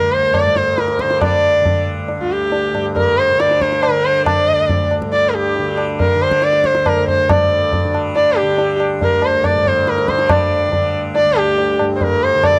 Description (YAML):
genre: indian classical, Hindustani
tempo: 139 BPM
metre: 7/4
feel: straight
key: unclear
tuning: A4 = 443 Hz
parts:
  - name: warm sarangi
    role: melody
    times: 0.0-12.6 s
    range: F4 to D5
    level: -17 LUFS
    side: equal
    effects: none
  - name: tanpura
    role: drone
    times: 0.0-12.6 s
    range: D2 to D3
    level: -25 LUFS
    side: equal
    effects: none
  - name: tabla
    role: percussion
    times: 0.3-12.6 s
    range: none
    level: -22 LUFS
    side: equal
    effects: none
room: little or no reverb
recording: dry, close 1970s-style studio recording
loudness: -16 LUFS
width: mono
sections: 0.0-12.6 A section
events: none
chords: none